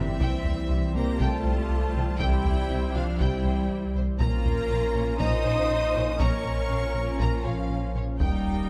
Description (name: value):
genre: cinematic, hybrid orchestral and electronic film score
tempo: 120 BPM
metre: 4/4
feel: straight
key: unclear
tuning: A4 = 438 Hz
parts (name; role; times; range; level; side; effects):
- warm symphonic violin section; melody; 0.0-8.4 s; C5 to Bb5; -42 LUFS; equal; none
- rich studio violin section; second line; 0.0-8.7 s; E5 to Eb6; -39 LUFS; equal; none
- rich symphonic viola section; accompaniment; 0.0-8.7 s; C4 to C5; -39 LUFS; equal; none
- mellow French horn section; sustained chords; 0.0-8.7 s; E4 to Eb5; -34 LUFS; equal; none
- phased analog pad; sustained chords; 0.0-8.7 s; Bb2 to D5; -40 LUFS; equal; none
- warm trombone section; sustained chords; 0.0-8.7 s; Bb2 to Db4; -41 LUFS; equal; none
- harp-like synth pluck; arpeggios; 0.0-8.4 s; C3 to Bb4; -41 LUFS; equal; none
- round analog bass; riff; 0.0-8.6 s; C2 to Bb2; -35 LUFS; equal; none
- punchy sub bass; bass; 0.0-8.7 s; Eb1 to C2; -33 LUFS; equal; none
- warm symphonic cello section; bass; 0.0-8.7 s; E3 to Eb4; -36 LUFS; equal; none
- warm symphonic double bass section; bass; 0.0-8.3 s; Bb1 to Eb2; -36 LUFS; equal; none
- solo taiko drums; drums; 0.2-8.7 s; none; -32 LUFS; equal; none
room: moderate scoring stage reverb, RT60 1.9 s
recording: none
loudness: -26 LUFS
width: mono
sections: 0.0-8.7 A section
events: none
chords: 0.2 C; 4.2 Bbm